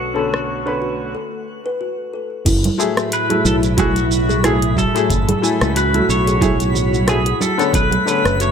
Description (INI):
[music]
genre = sunset chillout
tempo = 91 BPM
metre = 4/4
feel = swing 56% on 16ths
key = F# minor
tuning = A4 = 440 Hz
[part]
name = pedal steel guitar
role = melody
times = 0.0-8.5 s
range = F#4 to C#5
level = -22 LUFS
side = equal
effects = tape echo
[part]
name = soft string machine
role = sustained chords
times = 0.0-8.5 s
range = A2 to F#4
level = -24 LUFS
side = equal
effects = ensemble chorus
[part]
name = fretless electric bass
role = bass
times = 0.0-8.5 s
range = F#1 to C#2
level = -20 LUFS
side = equal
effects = wide subtle chorus
[part]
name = twinkling granular texture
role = texture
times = 0.0-8.5 s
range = F#5 to B6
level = -34 LUFS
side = equal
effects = built-in reverb
[part]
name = bright baby grand piano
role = accompaniment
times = 0.1-8.5 s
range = D3 to G#5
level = -21 LUFS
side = moving between left 9 dB and right 6 dB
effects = auto-pan, tape echo
[part]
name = kalimba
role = arpeggios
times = 0.2-8.5 s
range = E4 to B4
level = -24 LUFS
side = left 1 dB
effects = vintage 12-bit sampler grit, tape echo
[part]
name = deep house drum kit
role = drums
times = 0.3-8.5 s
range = crash cymbal, hi-hat, rim click, shaker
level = -23 LUFS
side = equal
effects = none
[part]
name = electronic kick drum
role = drums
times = 2.5-7.9 s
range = none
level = -20 LUFS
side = equal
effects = none
[part]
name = congas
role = percussion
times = 2.5-8.0 s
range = none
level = -25 LUFS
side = right 4 dB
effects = none
[sound]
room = light reverb, digital ambience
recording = none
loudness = -15 LUFS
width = side -7 dB against mid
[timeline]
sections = 0.0-2.5 A section; 2.5-8.5 B section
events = filter sweep on drum 0.0-2.5; break 1.1-2.5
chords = 0.0 Bm9; 2.5 F#m9; 7.4 Bm9